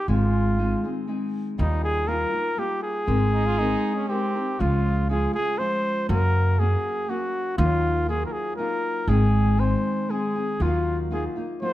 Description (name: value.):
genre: mexican folk, mariachi.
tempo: 120 BPM.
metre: 3/4.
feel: straight.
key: Ab major, Db major from 4.6 s.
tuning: A4 = 440 Hz.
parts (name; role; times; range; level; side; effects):
mellow trumpet; melody; 0.0-11.7 s; Eb4 to C5; -26 LUFS; equal; none.
nylon-string guitar; accompaniment; 0.0-11.7 s; Gb2 to Bb4; -27 LUFS; left 1 dB; none.
upright bass; bass; 0.1-11.3 s; Ab1 to Gb2; -23 LUFS; equal; none.
clear trumpet; second line; 3.3-4.6 s; C4 to F4; -31 LUFS; right 5 dB; none.
room: moderate recital hall reverb, RT60 1.4 s.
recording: close, detailed microphones.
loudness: -21 LUFS.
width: side -14 dB against mid.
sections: 0.0-4.6 A section; 4.6-11.7 B section.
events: none.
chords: 0.1 Ab; 1.6 Ebadd9; 3.1 Abadd9; 4.6 Db; 6.1 Gb; 7.6 Ebmadd9; 9.1 Ab; 10.6 Ebmadd9.